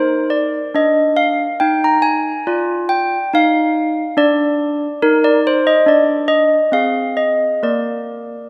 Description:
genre	classical, tune for handbells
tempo	70 BPM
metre	3/4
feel	straight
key	Eb major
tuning	A4 = 440 Hz
part	handbells	solo	0.0-8.5 s	Bb3 to Bb5	-16 LUFS	equal	none
room	moderate concert hall reverb, RT60 2.1 s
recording	none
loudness	-16 LUFS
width	mono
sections	0.0-8.5 A section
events	none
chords	0.0 Eb5; 2.5 Ddim; 5.0 Cm9 (rootless); 6.7 Ab/C; 7.6 Bb

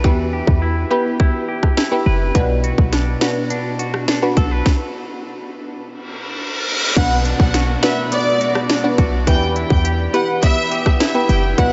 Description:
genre	dancehall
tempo	104 BPM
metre	4/4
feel	straight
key	B minor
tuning	A4 = 436 Hz
part	glassy wavetable pluck	accompaniment	0.0-11.7 s	B3 to B4	-25 LUFS	equal	chorus, phaser, sidechain pumping
part	clean electric guitar	arpeggios	0.0-11.7 s	B2 to B4	-27 LUFS	equal	subtle chorus
part	short 808-style bass	bass	0.0-11.7 s	F#1 to E2	-20 LUFS	equal	none
part	island pop drum kit	drums	0.0-11.7 s	crash cymbal, hi-hat, kick drum, rim click, snare drum	-22 LUFS	equal	overdrive
part	reverse cymbal and downlifter	sound effects	6.1-11.6 s	none	-27 LUFS	equal	none
part	warm studio violin section	melody	7.0-11.7 s	D5 to G5	-24 LUFS	equal	delay
room	wet huge ambient reverb, RT60 8.7 s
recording	dreamy mix soaked in reverb, nothing above 7.8 kHz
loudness	-17 LUFS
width	mono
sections	0.0-7.0 A section; 7.0-11.7 B section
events	stop 4.7-7.0; reverse cymbal 6.1-7.0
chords	0.0 Em; 2.3 Bm; 4.7 N.C.; 7.0 Bm; 9.3 Em

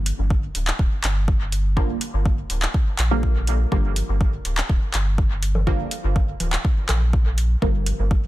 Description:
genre	dub techno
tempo	123 BPM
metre	4/4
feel	straight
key	G minor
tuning	A4 = 439 Hz
part	filtered dub chord stab	stabs	0.0-7.9 s	D3 to Bb3	-28 LUFS	right 1 dB	chorus, phaser, sidechain pumping, dub echo
part	warm sub bass	bass	0.0-8.3 s	D1 to Bb1	-22 LUFS	equal	sidechain pumping
part	deep house drum kit	drums	0.1-8.0 s	handclaps, hi-hat	-27 LUFS	equal	overdrive, studio reverb, dub echo
part	electronic kick drum	drums	0.3-8.2 s	none	-21 LUFS	equal	overdrive, studio reverb
part	bongos and congas	percussion	5.6-7.0 s	none	-33 LUFS	left 2 dB	overdrive, sidechain pumping on perc, studio reverb, dub echo
room	little or no reverb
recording	dense, heavily limited modern master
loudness	-19 LUFS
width	side -16 dB against mid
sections	0.0-8.3 A section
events	none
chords	0.0 Gm7

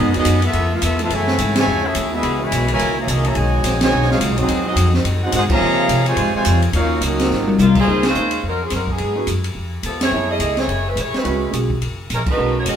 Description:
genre	jazz, big band swing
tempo	213 BPM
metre	4/4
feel	swing 60% on 8ths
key	unclear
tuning	A4 = 436 Hz
part	warm trumpet section	melody	0.0-7.6 s	Cb4 to Bb5	-20 LUFS	equal	none
part	clear trombone section	second line	0.0-7.6 s	Ab2 to Gb4	-22 LUFS	right 1 dB	none
part	mellow saxophone section	sustained chords	0.0-7.9 s	C3 to Db5	-29 LUFS	equal	none
part	upright bass	bass	0.0-12.8 s	Gb1 to Db3	-21 LUFS	equal	none
part	open jazz drum kit	drums	0.1-12.7 s	crash cymbal, hi-hat, kick drum, ride cymbal, snare drum, toms	-22 LUFS	left 1 dB	none
part	clear saxophone section	melody	7.6-12.8 s	F3 to Eb5	-21 LUFS	equal	none
part	warm baby grand piano	accompaniment	7.9-12.8 s	Ab3 to Db5	-24 LUFS	right 3 dB	none
room	moderate studio reverb, RT60 0.9 s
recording	band playing live in one room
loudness	-15 LUFS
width	side -8 dB against mid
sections	0.0-7.9 A section; 7.9-12.8 B section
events	band accent 1.5, 3.8, 5.5, 7.7, 8.0, 10.0, 12.2; drum fill 7.3-7.9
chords	0.0 Abm7; 0.5 Db7alt; 1.1 Gbm9; 2.2 Dbm7; 2.8 Gb13; 3.4 Cb69; 4.5 Ab7; 5.6 Dbmaj7; 6.7 Ebm7; 7.3 Ab13; 7.9 Dbmaj7; 9.0 Abm7; 9.6 Db7#9b13 (rootless); 10.1 Gbm9; 11.2 Dbm7; 11.8 Gbadd9

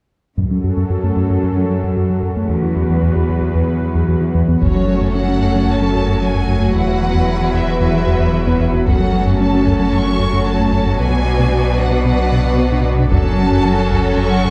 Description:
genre	cinematic, hybrid orchestral and electronic film score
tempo	113 BPM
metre	4/4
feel	straight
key	F# minor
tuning	A4 = 442 Hz
part	warm analog pad	sustained chords	0.4-14.5 s	F#3 to F#5	-24 LUFS	equal	chorus
part	harp-like synth pluck	arpeggios	0.4-14.5 s	E3 to B4	-24 LUFS	equal	chorus, digital delay
part	round analog bass	riff	0.4-14.5 s	E2 to B3	-22 LUFS	equal	none
part	rich symphonic cello section	bass	0.4-14.5 s	E2 to B2	-24 LUFS	equal	none
part	taiko ensemble	drums	0.4-1.4, 4.6-5.6, 8.9-9.9, 13.1-14.2 s	none	-24 LUFS	equal	none
part	warm symphonic violin section	melody	4.6-14.5 s	C#5 to C#6	-27 LUFS	equal	none
part	rich symphonic violin section	second line	4.6-14.5 s	F#4 to B4	-27 LUFS	equal	none
part	rich chamber viola section	accompaniment	4.6-14.5 s	F#3 to E4	-28 LUFS	equal	none
part	soft dub sub bass	bass	4.6-14.5 s	E1 to B1	-23 LUFS	equal	none
room	wet recital hall reverb, RT60 1.6 s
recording	dark, warm production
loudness	-16 LUFS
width	mono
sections	0.4-4.6 A section; 4.6-14.5 B section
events	none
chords	0.4 F#m; 2.5 Esus2; 4.6 F#m; 6.7 Esus2; 8.9 F#m; 11.0 Bm; 13.1 F#m

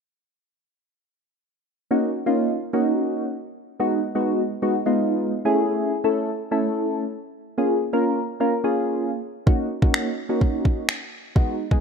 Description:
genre	dance-pop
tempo	127 BPM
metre	4/4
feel	straight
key	unclear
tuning	A4 = 440 Hz
part	soft electric-piano-like synth keys	accompaniment	1.9-11.8 s	Ab3 to Bb4	-21 LUFS	equal	chorus, phaser, sidechain pumping
part	smooth R&B drum kit	drums	9.5-11.8 s	finger snaps, kick drum	-19 LUFS	equal	none
room	light reverb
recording	none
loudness	-20 LUFS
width	side -6 dB against mid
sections	1.9-11.8 A section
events	none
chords	1.9 Gb6; 3.8 Cb6; 5.5 Amaj7; 7.6 Db6; 9.5 Gb6

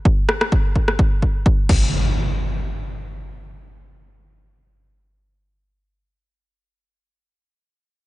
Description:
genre	piano house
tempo	free time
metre	none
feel	none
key	none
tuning	none
part	electronic kick drum	drums	0.1-1.8 s	none	-16 LUFS	equal	none
part	punchy analog drum machine	drums	0.3-1.8 s	crash cymbal, rim click	-23 LUFS	left 1 dB	overdrive
part	impact	sound effects	1.7-6.0 s	none	-22 LUFS	equal	none
room	little or no reverb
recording	nothing above 10.8 kHz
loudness	-16 LUFS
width	side -18 dB against mid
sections	0.0-1.9 A section; 1.9-5.7 B section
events	none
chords	none

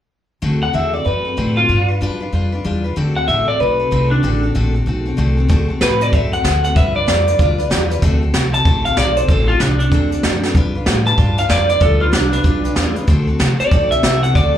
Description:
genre	rockabilly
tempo	190 BPM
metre	4/4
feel	swing 63% on 8ths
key	D mixolydian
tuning	A4 = 439 Hz
part	picked steel-string acoustic guitar	accompaniment	0.4-14.6 s	D3 to B4	-23 LUFS	left 3 dB	slapback echo
part	upright bass	bass	0.4-14.6 s	A1 to A2	-18 LUFS	equal	none
part	electric guitar through a small old amp	melody	0.6-14.6 s	D4 to A5	-17 LUFS	equal	slapback echo, tape echo
part	jazz brush drum kit	drums	5.5-14.4 s	hi-hat, kick drum, snare drum	-17 LUFS	equal	none
room	little or no reverb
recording	live gig heard through the venue's PA, club reverb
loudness	-13 LUFS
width	side -10 dB against mid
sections	0.4-5.5 A section; 5.5-14.6 B section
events	drum fill 10.4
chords	0.4 D7; 1.7 G7; 3.0 D7; 6.8 G7; 8.0 D7; 10.6 G7; 13.1 D7

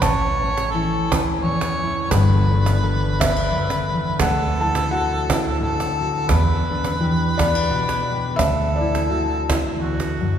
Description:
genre	acoustic folk duo or small band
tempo	86 BPM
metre	3/4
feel	swing 58% on 8ths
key	D major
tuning	A4 = 440 Hz
part	felt-muted upright piano	melody	0.0-10.1 s	D5 to A5	-27 LUFS	left 2 dB	none
part	mellow harmonica	second line	0.0-10.4 s	F#4 to C#5	-24 LUFS	equal	none
part	fingerpicked steel-string acoustic guitar	accompaniment	0.0-10.4 s	D2 to A4	-23 LUFS	left 2 dB	none
part	upright bass	bass	0.0-9.7 s	G1 to E2	-24 LUFS	right 1 dB	none
part	cajon	percussion	0.0-10.3 s	none	-25 LUFS	right 3 dB	none
room	wet church reverb, RT60 3.6 s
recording	recorded in a church or concert hall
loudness	-18 LUFS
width	side -9 dB against mid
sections	0.0-10.4 A section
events	none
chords	0.0 A; 2.1 Gadd9; 4.2 Dadd9; 6.3 Em7; 8.4 Dadd9

